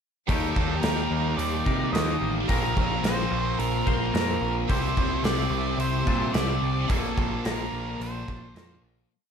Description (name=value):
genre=rock, shoegaze and dream pop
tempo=109 BPM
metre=4/4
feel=straight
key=unclear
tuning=A4 = 441 Hz
part: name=octave-fuzz lead guitar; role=melody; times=0.3-8.8 s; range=A4 to Eb5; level=-32 LUFS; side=right 3 dB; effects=distortion, analog delay
part: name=phased string machine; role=sustained chords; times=0.3-9.1 s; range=Bb3 to C6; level=-38 LUFS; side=equal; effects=ensemble chorus, phaser
part: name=twangy electric guitar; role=arpeggios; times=0.3-9.1 s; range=Bb3 to D5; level=-38 LUFS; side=left 10 dB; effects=ensemble chorus, analog delay
part: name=biting overdriven guitar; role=riff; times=0.3-9.1 s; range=Bb2 to E4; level=-31 LUFS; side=right 12 dB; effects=reverse reverb
part: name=thick fuzz guitar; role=riff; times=0.3-9.1 s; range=Bb2 to Eb4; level=-31 LUFS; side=left 12 dB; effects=distortion, analog chorus
part: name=growling picked electric bass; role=bass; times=0.3-9.1 s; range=A1 to C3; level=-30 LUFS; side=equal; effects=overdrive
part: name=gated 80s drum kit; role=drums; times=0.3-8.7 s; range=hi-hat, kick drum, snare drum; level=-27 LUFS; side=equal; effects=none
room=studio reverb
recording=lossy compression artefacts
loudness=-23 LUFS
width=side -7 dB against mid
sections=0.3-9.1 verse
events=fade-out 6.9-9.1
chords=0.3 Ebadd9; 2.5 Bbsus2; 4.7 C; 6.9 Bbadd9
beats=| 0.28 0.83 1.38 1.93 | 2.48 3.03 3.58 4.13 | 4.68 5.24 5.79 6.34 | 6.89 7.45 8.00 8.55